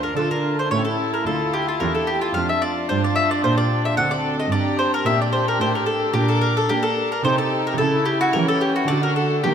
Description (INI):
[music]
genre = classical, baroque-style concerto movement with solo episodes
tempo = 110 BPM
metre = 3/4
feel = straight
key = unclear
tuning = A4 = 440 Hz
[part]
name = mandolin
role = melody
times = 0.0-9.5 s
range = F4 to F#5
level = -22 LUFS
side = left 1 dB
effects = none
[part]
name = warm chamber violin section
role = melody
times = 0.0-9.5 s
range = F#5 to D6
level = -33 LUFS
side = left 4 dB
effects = none
[part]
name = rich chamber violin section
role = second line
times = 0.0-9.5 s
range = D4 to Bb4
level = -28 LUFS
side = left 2 dB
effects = none
[part]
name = lute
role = accompaniment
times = 0.0-9.5 s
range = D2 to G4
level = -27 LUFS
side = right 1 dB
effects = none
[part]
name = warm chamber viola section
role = accompaniment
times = 0.0-9.5 s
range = Bb3 to F4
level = -26 LUFS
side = equal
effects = none
[part]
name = warm chamber cello section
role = bass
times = 0.0-9.5 s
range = D2 to Bb3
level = -26 LUFS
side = right 3 dB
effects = none
[sound]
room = wet recital hall reverb, RT60 1.8 s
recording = none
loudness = -18 LUFS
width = side -8 dB against mid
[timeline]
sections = 0.0-9.5 A section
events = none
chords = 0.0 Dm; 0.7 A7; 1.3 Dm; 2.9 Gm; 4.0 D7; 4.5 Gm; 6.2 Gm/Bb; 7.2 Am7b5/C; 7.8 C#dim7; 8.9 D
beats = 0.17 0.72 | 1.27 1.82 2.36 | 2.90 3.45 3.99 | 4.53 5.07 5.61 | 6.15 6.70 7.25 | 7.79 8.35 8.90 | 9.45